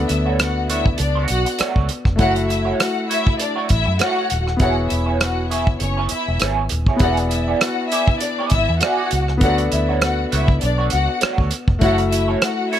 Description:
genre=lush 1970s-style soul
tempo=100 BPM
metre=4/4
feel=swing 54% on 16ths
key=B dorian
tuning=A4 = 440 Hz
part: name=warm studio string section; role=second line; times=0.0-12.8 s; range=C#4 to F#5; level=-23 LUFS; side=left 3 dB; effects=none
part: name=warm grand piano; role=accompaniment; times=0.0-12.8 s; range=A3 to E5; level=-24 LUFS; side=left 2 dB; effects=none
part: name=vintage muted fingered electric bass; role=bass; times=0.0-12.3 s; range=D#1 to F#2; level=-21 LUFS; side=equal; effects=none
part: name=electric guitar through a small old amp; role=riff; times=0.1-12.8 s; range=A3 to D5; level=-26 LUFS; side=right 7 dB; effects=wah, warbly pitch drift
part: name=warm soul drum kit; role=drums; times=0.1-12.8 s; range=hi-hat, kick drum, rim click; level=-20 LUFS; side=right 1 dB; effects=none
room=small room ambience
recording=none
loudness=-16 LUFS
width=side -10 dB against mid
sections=0.0-12.8 A section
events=none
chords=0.0 Bm9/D; 2.2 F#m7; 4.6 C#m7/E; 7.0 E7; 9.4 Bm9; 11.8 F#m7

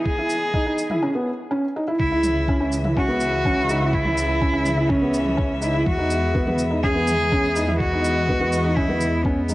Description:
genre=piano and strings electronica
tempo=124 BPM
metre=4/4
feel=straight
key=C# minor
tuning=A4 = 440 Hz
part: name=dark cello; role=melody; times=0.0-9.5 s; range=B3 to G#4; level=-23 LUFS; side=equal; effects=none
part: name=warm string quartet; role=sustained chords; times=0.0-9.5 s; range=C#3 to E5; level=-28 LUFS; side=equal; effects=sidechain pumping
part: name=electronic kick drum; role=drums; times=0.1-9.3 s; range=none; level=-25 LUFS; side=equal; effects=cassette tape
part: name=felt-muted upright piano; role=riff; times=0.2-9.5 s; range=B3 to E4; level=-24 LUFS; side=equal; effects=none
part: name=electronic shaker and toms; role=drums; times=0.3-9.5 s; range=none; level=-32 LUFS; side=equal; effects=cassette tape
part: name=dark detuned saw bass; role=bass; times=2.0-9.5 s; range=C#2 to E2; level=-26 LUFS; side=equal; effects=transformer saturation, sidechain pumping
room=moderate spring reverb, RT60 1.8 s, small room ambience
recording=home recording on cassette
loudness=-19 LUFS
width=side -17 dB against mid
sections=0.0-2.0 A section; 2.0-9.5 B section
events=build-up 0.0-2.0; drop 2.0-9.5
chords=0.0 Emaj7; 2.0 C#m; 5.9 Emaj7

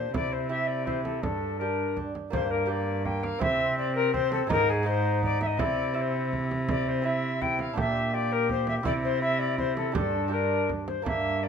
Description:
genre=classical, renaissance-style consort dance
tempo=165 BPM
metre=3/4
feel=straight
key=G dorian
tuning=A4 = 440 Hz
part: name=mellow alto recorder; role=melody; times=0.0-11.5 s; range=Ab4 to G5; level=-28 LUFS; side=left 4 dB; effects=none
part: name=lute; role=accompaniment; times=0.0-11.5 s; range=G2 to G4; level=-35 LUFS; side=right 7 dB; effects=none
part: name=warm cello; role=bass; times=0.0-11.5 s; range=G2 to C3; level=-31 LUFS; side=right 2 dB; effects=none
part: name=clear bassoon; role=accompaniment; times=0.1-11.5 s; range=Bb3 to G4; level=-33 LUFS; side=left 1 dB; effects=none
part: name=frame drum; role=percussion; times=0.1-11.2 s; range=none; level=-34 LUFS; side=right 3 dB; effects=none
room=moderate large studio reverb, RT60 0.9 s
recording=minimal, uncompressed stereo recording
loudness=-25 LUFS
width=side -7 dB against mid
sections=0.0-2.3 A section; 2.3-11.1 A section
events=none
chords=0.1 C; 1.2 Gm; 3.4 C; 4.5 Ab; 5.6 C; 7.8 Gm/Bb; 8.9 C; 10.0 Gm

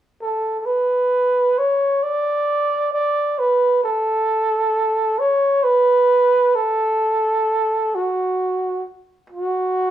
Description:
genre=folk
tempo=44 BPM (dotted quarters)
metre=6/8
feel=straight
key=unclear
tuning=A4 = 439 Hz
part: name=breathy flugelhorn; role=melody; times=0.2-9.9 s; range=F#4 to D5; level=-16 LUFS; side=right 1 dB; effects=none
room=light reverb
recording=none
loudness=-16 LUFS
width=side -11 dB against mid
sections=0.2-5.6 A section; 5.6-9.9 B section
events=none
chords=none

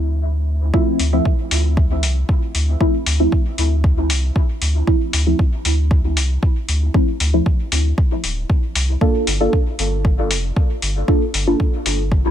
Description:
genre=dub techno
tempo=116 BPM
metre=4/4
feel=straight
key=D minor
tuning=A4 = 441 Hz
part: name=warm sub bass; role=bass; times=0.0-12.3 s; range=D1 to D2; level=-18 LUFS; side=equal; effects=sidechain pumping
part: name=deep mellow chord stab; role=stabs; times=0.7-11.7 s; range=F3 to A4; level=-22 LUFS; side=equal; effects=chorus, phaser, sidechain pumping, dub echo
part: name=electronic kick drum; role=drums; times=0.7-12.2 s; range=none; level=-17 LUFS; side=equal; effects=none
part: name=electronic hi-hat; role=drums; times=1.0-12.0 s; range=none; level=-22 LUFS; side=left 3 dB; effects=none
room=digital ambience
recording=none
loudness=-15 LUFS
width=side -10 dB against mid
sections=0.7-12.3 A section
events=none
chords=0.0 N.C.; 0.7 Dm7; 9.0 Gm7

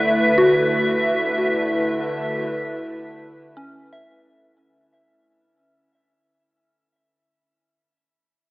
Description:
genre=ambient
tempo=free time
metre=none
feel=none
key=D major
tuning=A4 = 440 Hz
part: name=warbly tape-like pad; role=sustained chords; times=0.0-4.6 s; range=D3 to E5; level=-20 LUFS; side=equal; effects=chorus, built-in reverb, shimmer reverb
part: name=soft synth bell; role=arpeggios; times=0.0-7.4 s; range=C#4 to E5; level=-22 LUFS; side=left 1 dB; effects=chorus, phaser, tape echo, shimmer reverb
part: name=round analog bass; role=bass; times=0.0-4.5 s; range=D2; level=-53 LUFS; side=equal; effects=none
part: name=organ-like drone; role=drone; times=0.0-4.7 s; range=D3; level=-33 LUFS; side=equal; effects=ensemble chorus, built-in reverb, phaser
room=wet cathedral reverb, RT60 6.4 s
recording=AM radio sound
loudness=-18 LUFS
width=side -20 dB against mid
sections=0.0-4.6 A section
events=fade-out 0.0-4.6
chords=0.0 D69

